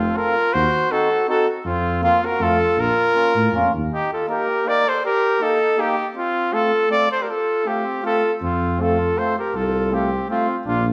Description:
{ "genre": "alpine folk, alpine dance band", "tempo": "160 BPM", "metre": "3/4", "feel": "swing 54% on 8ths", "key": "Bb harmonic minor", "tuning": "A4 = 439 Hz", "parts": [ { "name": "clear flugelhorn", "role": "melody", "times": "0.0-10.9 s", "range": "F4 to D5", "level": "-22 LUFS", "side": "equal", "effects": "none" }, { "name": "mellow trumpet", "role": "second line", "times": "0.0-10.8 s", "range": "C4 to Bb4", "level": "-29 LUFS", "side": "equal", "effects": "none" }, { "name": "dark tuba", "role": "bass", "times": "0.0-3.9, 8.4-10.9 s", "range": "F1 to A2", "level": "-26 LUFS", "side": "equal", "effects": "none" }, { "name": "mellow accordion", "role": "accompaniment", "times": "0.2-10.5 s", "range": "A3 to A4", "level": "-26 LUFS", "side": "equal", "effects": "none" } ], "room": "wet stone room reverb, RT60 1.2 s", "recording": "band playing live in one room", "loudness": "-20 LUFS", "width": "mono", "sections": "0.0-3.9 A section; 3.9-10.9 B section", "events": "none", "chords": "0.0 F; 0.5 Cdim/Eb; 1.7 Fsus4; 2.4 F; 2.8 Bbm; 3.9 Eb; 6.2 F" }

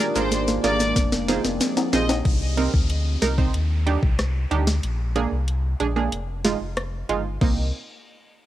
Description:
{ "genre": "dancehall", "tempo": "93 BPM", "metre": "4/4", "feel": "straight", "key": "C minor", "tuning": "A4 = 439 Hz", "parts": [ { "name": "punchy chord stab", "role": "accompaniment", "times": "0.0-7.7 s", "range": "Ab3 to C5", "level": "-26 LUFS", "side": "right 6 dB", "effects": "chorus, cassette tape" }, { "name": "deep dark ambient pad", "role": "sustained chords", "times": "0.0-2.2 s", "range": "F3 to Ab4", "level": "-28 LUFS", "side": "equal", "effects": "chorus, built-in reverb, sidechain pumping, cassette tape" }, { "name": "clear studio violin section", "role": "melody", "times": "0.2-2.0 s", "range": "C5 to Eb5", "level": "-28 LUFS", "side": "left 1 dB", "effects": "tape echo" }, { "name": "sub bass with octave", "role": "bass", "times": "0.2-7.7 s", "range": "F1 to Eb2", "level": "-25 LUFS", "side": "left 1 dB", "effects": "none" }, { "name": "island pop drum kit", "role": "drums", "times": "0.2-7.6 s", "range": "crash cymbal, hi-hat, kick drum, rim click, snare drum", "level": "-23 LUFS", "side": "left 1 dB", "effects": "cassette tape" }, { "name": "maracas and timbales", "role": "percussion", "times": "0.2-2.2 s", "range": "none", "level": "-31 LUFS", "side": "left 8 dB", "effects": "none" }, { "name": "downlifter", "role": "sound effects", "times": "2.3-7.4 s", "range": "none", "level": "-38 LUFS", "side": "left 1 dB", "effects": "none" } ], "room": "little or no reverb", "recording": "home recording on cassette", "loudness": "-20 LUFS", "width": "side -13 dB against mid", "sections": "0.0-2.3 A section; 2.3-7.4 B section; 7.4-8.5 C section", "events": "drum fill 0.0-2.3; break 4.8-7.4", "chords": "0.0 Bb7; 1.0 Fm7; 2.3 Cm7; 3.5 Ebmaj7; 4.8 Bb7; 6.1 Fm7; 7.4 Cm7" }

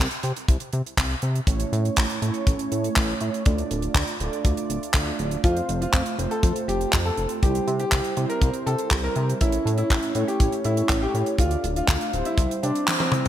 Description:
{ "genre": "italo disco", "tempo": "121 BPM", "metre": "4/4", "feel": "straight", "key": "unclear", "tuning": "A4 = 440 Hz", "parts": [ { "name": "chorused synth bass", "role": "bass", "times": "0.0-12.7 s", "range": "D1 to C3", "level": "-27 LUFS", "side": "equal", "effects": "none" }, { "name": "tight funk drum kit", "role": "drums", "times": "0.1-13.3 s", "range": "handclaps, hi-hat, toms", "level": "-27 LUFS", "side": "equal", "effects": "studio reverb" }, { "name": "kick drum", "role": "drums", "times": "0.5-12.5 s", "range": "none", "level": "-21 LUFS", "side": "equal", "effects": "studio reverb" }, { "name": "mellow synth brass", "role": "stabs", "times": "1.5-13.3 s", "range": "G3 to D5", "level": "-29 LUFS", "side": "right 4 dB", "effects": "chorus" }, { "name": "warm baby grand piano", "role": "melody", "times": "5.4-13.2 s", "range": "C4 to Bb4", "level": "-27 LUFS", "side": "left 1 dB", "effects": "ping-pong delay" } ], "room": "moderate lush hall reverb, RT60 2.1 s", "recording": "bright 1980s-style digital production", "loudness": "-21 LUFS", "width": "side -11 dB against mid", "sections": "0.0-13.3 A section", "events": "drum fill 12.9-13.3; band accent 12.9", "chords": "0.0 N.C.; 1.5 A; 3.5 Dm; 5.4 F; 7.4 C; 9.4 A; 11.4 Dm; 12.4 C" }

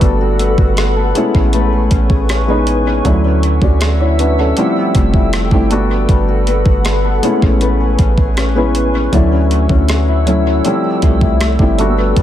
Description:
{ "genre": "contemporary R&B", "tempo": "79 BPM", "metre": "4/4", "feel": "straight", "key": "D major", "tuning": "A4 = 440 Hz", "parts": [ { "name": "felt-muted upright piano", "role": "accompaniment", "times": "0.0-12.2 s", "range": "F#3 to D5", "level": "-17 LUFS", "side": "equal", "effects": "none" }, { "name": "granular cloud pad", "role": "sustained chords", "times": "0.0-12.2 s", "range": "A4 to E6", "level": "-22 LUFS", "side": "equal", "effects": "built-in reverb, sidechain pumping" }, { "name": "fingerpicked old ladder-braced acoustic guitar", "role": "arpeggios", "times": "0.0-12.2 s", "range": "D3 to B4", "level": "-19 LUFS", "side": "left 7 dB", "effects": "dub echo" }, { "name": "warm 808-style bass", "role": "bass", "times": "0.0-12.2 s", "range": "F1 to D2", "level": "-15 LUFS", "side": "right 1 dB", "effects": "none" }, { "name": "gated 80s digital drum machine", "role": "drums", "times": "0.0-12.2 s", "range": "hi-hat, kick drum, rim click", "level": "-15 LUFS", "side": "equal", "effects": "none" } ], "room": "digital ambience", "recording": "echo-heavy mix", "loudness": "-11 LUFS", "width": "side -11 dB against mid", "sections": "0.0-12.2 A section", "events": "none", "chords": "0.0 Gmaj9; 1.2 Amaj9; 3.1 Dmaj9; 4.6 Fmaj9; 5.7 Gmaj9; 7.2 Amaj9; 9.1 Dmaj9; 10.6 Fmaj9" }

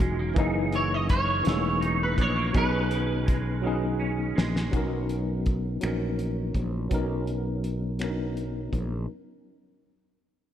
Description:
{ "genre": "slow six-eight R&B", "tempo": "55 BPM (dotted quarters)", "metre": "6/8", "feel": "straight", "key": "B major", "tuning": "A4 = 440 Hz", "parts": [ { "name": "clean electric guitar", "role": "second line", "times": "0.0-5.3 s", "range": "F#2 to D#4", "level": "-35 LUFS", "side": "right 4 dB", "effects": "ensemble chorus" }, { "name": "tine electric piano", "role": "accompaniment", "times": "0.0-9.1 s", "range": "B2 to C#5", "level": "-30 LUFS", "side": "left 1 dB", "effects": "overdrive, fast stereo tremolo" }, { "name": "fretless electric bass", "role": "bass", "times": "0.0-9.1 s", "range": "E1 to B1", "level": "-29 LUFS", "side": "equal", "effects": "analog chorus" }, { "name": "cloth-damped thuddy drum kit", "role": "drums", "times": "0.0-8.9 s", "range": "finger snaps, hi-hat, kick drum, snare drum", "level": "-28 LUFS", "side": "equal", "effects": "none" }, { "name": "electric guitar at the edge of break-up", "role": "melody", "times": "0.8-4.0 s", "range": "B4 to D#5", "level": "-28 LUFS", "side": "right 2 dB", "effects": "ensemble chorus" } ], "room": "moderate lush hall reverb, RT60 1.9 s", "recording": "dreamy mix soaked in reverb", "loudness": "-24 LUFS", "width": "side -10 dB against mid", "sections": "0.0-4.7 A section; 4.7-9.1 B section", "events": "drum fill 3.6-4.7", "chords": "0.4 F#13; 2.5 B69; 4.7 Bmaj9" }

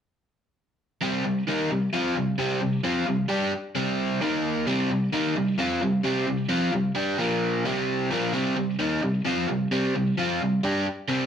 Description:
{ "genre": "rock", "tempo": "131 BPM", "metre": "4/4", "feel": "straight", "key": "unclear", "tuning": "A4 = 440 Hz", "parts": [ { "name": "overdriven electric guitar", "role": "solo", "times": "1.0-11.3 s", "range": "Bb2 to G4", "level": "-23 LUFS", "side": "equal", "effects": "none" } ], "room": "wet studio reverb, RT60 0.8 s", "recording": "band playing live in one room", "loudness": "-23 LUFS", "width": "side -8 dB against mid", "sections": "1.0-11.3 A section", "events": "none", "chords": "1.0 C5; 4.2 Eb5; 4.7 C5; 7.2 Bb5; 7.7 C5" }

